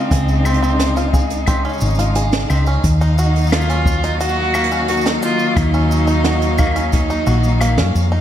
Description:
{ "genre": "folktronica", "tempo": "88 BPM", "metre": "4/4", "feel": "straight", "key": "unclear", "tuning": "A4 = 440 Hz", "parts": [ { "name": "dark cello", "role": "melody", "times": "0.0-7.9 s", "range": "C4 to Gb4", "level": "-21 LUFS", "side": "right 1 dB", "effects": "diffuse ambient delay" }, { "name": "rich string quartet", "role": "sustained chords", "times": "0.0-8.2 s", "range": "Db3 to F5", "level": "-22 LUFS", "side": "left 2 dB", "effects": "none" }, { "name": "bluegrass banjo", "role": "arpeggios", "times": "0.0-8.2 s", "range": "Bb3 to Ab4", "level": "-24 LUFS", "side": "right 1 dB", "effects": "diffuse ambient delay" }, { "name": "hollow-body short-scale fingered electric bass", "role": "bass", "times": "0.1-8.2 s", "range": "Ab1 to Gb2", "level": "-17 LUFS", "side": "equal", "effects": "none" }, { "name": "jazz brush drum kit", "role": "drums", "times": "0.1-8.1 s", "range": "cabasa, claves, hi-hat, snare drum", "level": "-24 LUFS", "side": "right 2 dB", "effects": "none" }, { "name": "kick drum", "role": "drums", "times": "0.1-7.1 s", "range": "none", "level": "-18 LUFS", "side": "equal", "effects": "none" } ], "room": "moderate plate reverb, RT60 1.9 s, small room ambience", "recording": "dreamy mix soaked in reverb", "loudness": "-14 LUFS", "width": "side -11 dB against mid", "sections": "0.0-8.2 A section", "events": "none", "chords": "0.0 Dbmaj7; 2.8 Ebm7" }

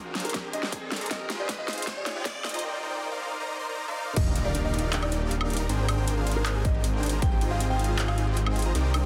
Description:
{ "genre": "future bass", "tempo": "157 BPM", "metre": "4/4", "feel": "half-time", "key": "unclear", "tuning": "A4 = 440 Hz", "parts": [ { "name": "unison pluck", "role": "arpeggios", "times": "0.0-9.1 s", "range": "C4 to G4", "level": "-41 LUFS", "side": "equal", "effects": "sidechain pumping, dub echo" }, { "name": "dense compressed supersaw", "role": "riff", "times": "0.0-9.1 s", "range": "D4 to C6", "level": "-35 LUFS", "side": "equal", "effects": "sidechain pumping, dub echo" }, { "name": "riser and impact", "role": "sound effects", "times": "0.0-5.7 s", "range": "none", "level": "-39 LUFS", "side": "equal", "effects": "none" }, { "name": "dark baby grand piano", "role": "melody", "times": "0.2-8.3 s", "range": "Bb4 to G5", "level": "-40 LUFS", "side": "equal", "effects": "sidechain pumping, dub echo" }, { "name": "big-room dance drum kit", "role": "drums", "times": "0.2-9.0 s", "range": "crash cymbal, handclaps, hi-hat, snare drum, woodblock", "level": "-36 LUFS", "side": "equal", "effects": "overdrive" }, { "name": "electronic kick drum", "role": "drums", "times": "0.3-4.2, 6.6-7.3 s", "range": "none", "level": "-30 LUFS", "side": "equal", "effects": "overdrive" }, { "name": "detuned saw bass", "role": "bass", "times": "4.2-9.1 s", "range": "Eb1 to C2", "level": "-29 LUFS", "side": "equal", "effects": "chorus, sidechain pumping" } ], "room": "light reverb, digital ambience", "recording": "dense, heavily limited modern master, high-pass filter", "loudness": "-28 LUFS", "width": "mono", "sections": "0.0-4.2 A section; 4.2-9.1 B section", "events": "build-up 0.0-4.2; drum fill 0.0-2.6; riser 0.0-2.6; filter sweep on grand piano 0.0-4.2; drop 4.2-9.1; impact 4.2-5.7", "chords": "0.0 Abmaj9#11; 1.1 Fm9; 2.6 Cm9; 4.2 Ebmaj9; 5.7 Abmaj9#11; 7.2 Fm9/Ab" }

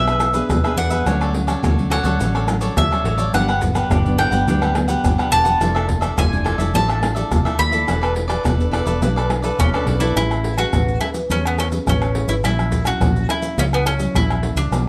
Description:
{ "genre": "samba and choro", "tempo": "106 BPM", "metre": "4/4", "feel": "straight", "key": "A major", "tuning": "A4 = 439 Hz", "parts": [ { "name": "bowl-back mandolin", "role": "melody", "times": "0.0-14.9 s", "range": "B3 to B5", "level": "-25 LUFS", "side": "equal", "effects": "none" }, { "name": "cavaquinho", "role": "accompaniment", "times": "0.0-10.2 s", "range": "D4 to F#5", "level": "-28 LUFS", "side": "equal", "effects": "none" }, { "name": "nylon-string guitar", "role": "accompaniment", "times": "0.0-14.9 s", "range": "G2 to B4", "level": "-28 LUFS", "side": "equal", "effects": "none" }, { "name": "vintage muted fingered electric bass", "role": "bass", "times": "0.0-14.9 s", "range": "E1 to E2", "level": "-24 LUFS", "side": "equal", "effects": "none" }, { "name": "maracas, pandeiro, tamborim and surdo", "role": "percussion", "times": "0.1-14.9 s", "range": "none", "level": "-24 LUFS", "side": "equal", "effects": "none" } ], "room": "moderate studio reverb, RT60 0.8 s", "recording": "lossy compression artefacts", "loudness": "-19 LUFS", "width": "mono", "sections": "0.0-10.2 A section; 10.2-14.9 B section", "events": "mandolin solo 0.0-10.2", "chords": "0.0 E7; 1.1 Dmaj7; 3.3 Gmaj7; 5.6 Dmadd9/F; 7.9 E7sus4; 10.2 Amaj9; 12.4 F#7/A#" }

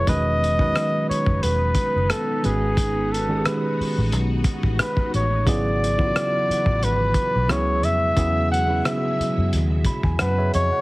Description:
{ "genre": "R&B, neo-soul", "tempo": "89 BPM", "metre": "4/4", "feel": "swing 54% on 16ths", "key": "E major", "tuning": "A4 = 440 Hz", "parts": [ { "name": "trumpet with bucket mute", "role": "melody", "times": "0.0-10.8 s", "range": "G#4 to F#5", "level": "-23 LUFS", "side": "equal", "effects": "plate reverb" }, { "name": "tine electric piano", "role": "accompaniment", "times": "0.0-10.8 s", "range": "C#3 to B5", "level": "-26 LUFS", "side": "right 1 dB", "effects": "plate reverb" }, { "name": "string machine, full ensemble", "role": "sustained chords", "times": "0.0-10.8 s", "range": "B2 to E5", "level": "-33 LUFS", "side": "equal", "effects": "phaser, ensemble chorus, plate reverb" }, { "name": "vintage muted fingered electric bass", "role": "bass", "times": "0.0-10.7 s", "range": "E1 to F#2", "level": "-23 LUFS", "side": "equal", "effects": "none" }, { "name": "cloth-damped thuddy drum kit", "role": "drums", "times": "0.1-10.7 s", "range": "hi-hat, kick drum, rim click", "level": "-24 LUFS", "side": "equal", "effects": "none" } ], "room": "light reverb", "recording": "heavily compressed radio sound, multiband compression, vinyl crackle", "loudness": "-19 LUFS", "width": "side -21 dB against mid", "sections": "0.1-10.8 A section", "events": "tine electric piano fill 9.5-10.8", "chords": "0.1 Emaj7; 2.4 G#m7; 5.5 E9/G#; 7.5 C#m7; 8.2 Emaj9" }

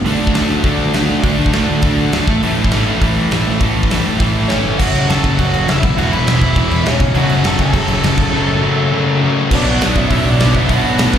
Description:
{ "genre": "punk rock", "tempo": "203 BPM", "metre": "4/4", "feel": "straight", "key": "B minor", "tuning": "A4 = 439 Hz", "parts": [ { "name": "cranked stack guitar", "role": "riff", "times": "0.0-11.2 s", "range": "E2 to D4", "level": "-20 LUFS", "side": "right 10 dB", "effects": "overdrive, slapback echo" }, { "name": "sludgy distorted guitar", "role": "riff", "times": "0.0-11.2 s", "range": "E2 to D4", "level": "-18 LUFS", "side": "left 7 dB", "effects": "overdrive, slapback echo" }, { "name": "picked electric bass", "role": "bass", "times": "0.0-11.2 s", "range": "E1 to A2", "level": "-18 LUFS", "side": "right 1 dB", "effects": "none" }, { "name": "big rock drum kit", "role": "drums", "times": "0.1-11.2 s", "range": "crash cymbal, hi-hat, kick drum, snare drum", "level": "-18 LUFS", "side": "equal", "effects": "none" }, { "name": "smooth overdriven lead guitar", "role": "melody", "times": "4.5-11.2 s", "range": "C#4 to A5", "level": "-20 LUFS", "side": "right 1 dB", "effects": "slapback echo, digital delay" }, { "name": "distorted electric guitar", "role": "riff", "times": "7.1-11.2 s", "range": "F#2 to D4", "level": "-20 LUFS", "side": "equal", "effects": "distortion, slapback echo" } ], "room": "little or no reverb", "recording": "live gig heard through the venue's PA, recital hall reverb", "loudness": "-12 LUFS", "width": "side -9 dB against mid", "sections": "0.0-4.8 A section; 4.8-9.5 B section; 9.5-11.2 C section", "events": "none", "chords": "0.0 D5; 2.3 A; 4.8 F#m; 5.8 E5; 7.0 F#m; 9.5 Bm" }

